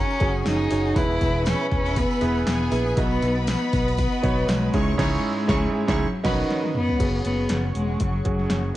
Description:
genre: piano-driven pop.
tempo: 119 BPM.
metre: 4/4.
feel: swing 56% on 16ths.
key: B major.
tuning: A4 = 440 Hz.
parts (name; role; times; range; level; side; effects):
rich cello; melody; 0.0-8.7 s; D#3 to E4; -26 LUFS; left 1 dB; none.
clear studio violin section; second line; 0.0-6.4 s; G#4 to C#6; -32 LUFS; left 2 dB; ping-pong delay.
clear concert grand piano; accompaniment; 0.0-8.8 s; G#2 to C#5; -27 LUFS; right 3 dB; none.
airy breathy pad; sustained chords; 0.0-8.8 s; G#4 to E6; -36 LUFS; left 2 dB; chorus, phaser.
modern bright picked electric bass; bass; 0.0-8.7 s; E1 to C#2; -26 LUFS; equal; none.
tambourine; percussion; 0.1-4.9 s; none; -46 LUFS; left 4 dB; none.
deep house drum kit; drums; 0.2-8.6 s; crash cymbal, hi-hat, kick drum, snare drum, toms; -26 LUFS; equal; overdrive.
room: moderate studio reverb, RT60 0.9 s.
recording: worn, warbling old tape, cassette tape, warbly pitch drift, nothing above 10.4 kHz.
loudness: -20 LUFS.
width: side -14 dB against mid.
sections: 0.0-7.0 A section; 7.0-8.8 B section.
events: band accent 5.0-7.0; drum fill 6.5-7.0.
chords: 0.0 F#sus2; 1.0 E; 3.0 B; 4.7 C#m; 6.0 Badd9; 7.0 F#sus2.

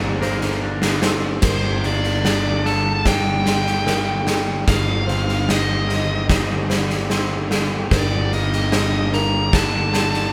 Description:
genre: post-rock.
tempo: 74 BPM.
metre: 4/4.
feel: straight.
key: G minor.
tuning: A4 = 442 Hz.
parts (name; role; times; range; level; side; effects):
rich symphonic string section; sustained chords; 0.0-10.3 s; Bb2 to A5; -35 LUFS; equal; none.
felt-muted upright piano; arpeggios; 0.0-9.9 s; A4 to Eb5; -36 LUFS; equal; none.
twangy electric guitar; arpeggios; 0.0-10.3 s; G2 to Bb4; -34 LUFS; equal; none.
fuzz fingered electric bass; bass; 0.0-10.3 s; G1; -25 LUFS; equal; overdrive.
big rock drum kit; drums; 0.2-10.2 s; crash cymbal, kick drum, snare drum; -23 LUFS; equal; none.
dark smooth lead guitar; melody; 1.5-10.3 s; C5 to Bb5; -26 LUFS; equal; overdrive.
room: light reverb.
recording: band playing live in one room.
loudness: -19 LUFS.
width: mono.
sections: 0.0-1.4 A section; 1.4-10.3 B section.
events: none.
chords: 0.0 Bbadd9/G; 1.4 Gmadd9; 4.7 Eb6/G; 7.9 Gmadd9.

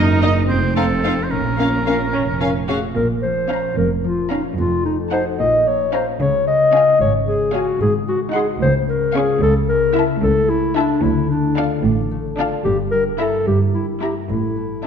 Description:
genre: cinematic, playful, whimsical film cue.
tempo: 74 BPM (dotted quarters).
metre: 6/8.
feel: straight.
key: Bb minor, D minor from 9.4 s.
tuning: A4 = 440 Hz.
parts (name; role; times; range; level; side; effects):
rich studio violin section; melody; 0.0-14.9 s; Eb5 to Db6; -29 LUFS; left 5 dB; none.
clear oboe; second line; 0.0-2.7 s; A4 to Eb5; -23 LUFS; right 1 dB; none.
rich studio violin section; second line; 0.0-14.9 s; Db4 to Gb5; -28 LUFS; left 2 dB; none.
rich studio viola section; accompaniment; 0.0-14.9 s; Bb3 to Gb4; -27 LUFS; right 1 dB; none.
concert harp; arpeggios; 0.0-14.9 s; F2 to Bb4; -24 LUFS; left 9 dB; none.
rich studio cello section; bass; 0.0-14.9 s; Db2 to Eb4; -24 LUFS; right 4 dB; none.
rich studio double bass section; bass; 0.0-14.9 s; F1 to D2; -24 LUFS; right 4 dB; none.
mellow clarinet; second line; 1.9-14.9 s; D4 to Eb5; -18 LUFS; left 2 dB; none.
room: moderate scoring stage reverb, RT60 1.6 s.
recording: dark, warm production.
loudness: -16 LUFS.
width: side -7 dB against mid.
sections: 0.0-3.0 A section; 3.0-14.9 B section.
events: none.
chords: 0.5 F7; 1.3 Bbm; 4.6 F7b9; 5.4 Bbm; 6.2 Db; 7.8 Ab7; 8.6 Db; 9.4 A/C#; 11.0 Dm; 12.7 Edim/G; 14.3 A5.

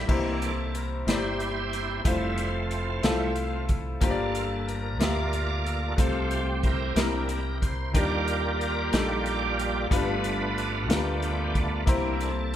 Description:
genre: slow gospel.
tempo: 61 BPM (dotted quarters).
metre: 6/8.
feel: straight.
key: unclear.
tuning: A4 = 440 Hz.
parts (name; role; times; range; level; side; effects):
bright baby grand piano; accompaniment; 0.0-12.6 s; G2 to F5; -30 LUFS; left 3 dB; none.
bright tonewheel organ; sustained chords; 0.0-12.6 s; E3 to E5; -30 LUFS; right 3 dB; fast rotary speaker, overdrive, chorus vibrato.
deep dub fingered electric bass; bass; 0.0-12.6 s; F1 to Eb2; -31 LUFS; equal; none.
warm soul drum kit; drums; 0.1-12.6 s; crash cymbal, hi-hat, kick drum, snare drum; -28 LUFS; equal; none.
room: light reverb.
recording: none.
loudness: -24 LUFS.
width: side -11 dB against mid.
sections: 0.1-12.6 A section.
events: tonewheel organ solo 0.1-12.6.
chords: 0.1 C7; 2.1 Fmaj7; 4.0 Gm7; 6.0 F/C; 7.0 C7; 7.9 Ebmaj7; 9.9 G7; 11.9 C7.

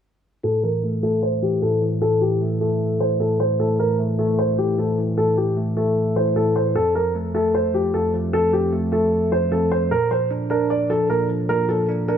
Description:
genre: hip hop, trap.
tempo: 152 BPM.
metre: 4/4.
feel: half-time.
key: A phrygian.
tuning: A4 = 439 Hz.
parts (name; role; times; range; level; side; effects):
dark concert grand piano; melody; 0.4-12.2 s; G4 to D5; -20 LUFS; left 1 dB; low-pass filter.
bell-like tine electric piano; accompaniment; 0.4-12.2 s; F2 to D4; -22 LUFS; right 1 dB; lush chorus, low-pass filter.
room: light reverb, studio reverb.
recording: none.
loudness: -18 LUFS.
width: side -8 dB against mid.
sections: 0.4-12.2 A section.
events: filter sweep 0.4-12.2.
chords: 0.4 A5; 6.8 F; 9.9 Bb.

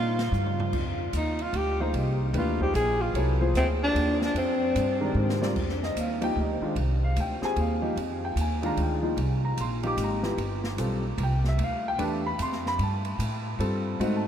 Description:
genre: modal jazz.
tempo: 149 BPM.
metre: 3/4.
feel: swing 64% on 8ths.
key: unclear.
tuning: A4 = 438 Hz.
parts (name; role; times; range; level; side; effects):
breathy tenor saxophone; melody; 0.0-5.4 s; C4 to Ab4; -29 LUFS; left 1 dB; tape echo.
upright bass; bass; 0.0-14.3 s; G1 to Bb2; -28 LUFS; equal; none.
open jazz drum kit; drums; 0.2-14.1 s; crash cymbal, hi-hat, kick drum, ride cymbal, snare drum, toms; -37 LUFS; right 2 dB; none.
warm grand piano; accompaniment; 1.8-14.3 s; Eb3 to D6; -30 LUFS; left 1 dB; wide subtle chorus.
room: wet huge ambient reverb, RT60 8.7 s.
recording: dreamy mix soaked in reverb.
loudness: -24 LUFS.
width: side -9 dB against mid.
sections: 0.0-5.6 A section; 5.6-14.3 B section.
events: drum fill 0.3-0.7, 5.2-5.6.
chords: 0.0 C7sus4 (rootless); 0.7 Fm11; 5.6 F9sus4; 10.4 G9sus4.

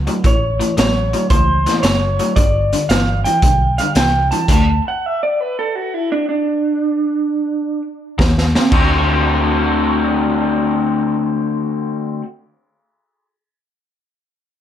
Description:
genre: electric blues shuffle.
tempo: 113 BPM.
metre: 4/4.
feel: swing 68% on 8ths.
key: D mixolydian.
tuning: A4 = 445 Hz.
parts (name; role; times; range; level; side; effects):
raw garage guitar; riff; 0.0-4.8, 8.2-12.3 s; G2 to F#4; -18 LUFS; left 2 dB; overdrive.
vintage muted fingered electric bass; bass; 0.0-4.8, 8.2-11.9 s; F#1 to Eb2; -20 LUFS; equal; none.
raw garage drum kit; drums; 0.1-4.7, 8.2-8.9 s; crash cymbal, hi-hat, kick drum, snare drum; -17 LUFS; equal; none.
electric guitar through a small old amp; melody; 0.3-7.8 s; D4 to A5; -18 LUFS; right 2 dB; spring reverb.
room: moderate studio reverb, RT60 0.8 s.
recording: none.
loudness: -14 LUFS.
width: side -10 dB against mid.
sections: 0.0-8.7 A section; 8.7-13.0 B section.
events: stop 4.5-8.2; drum fill 8.2-8.7.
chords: 0.0 A; 2.4 G; 4.5 D5; 8.2 Eb5; 8.7 D7.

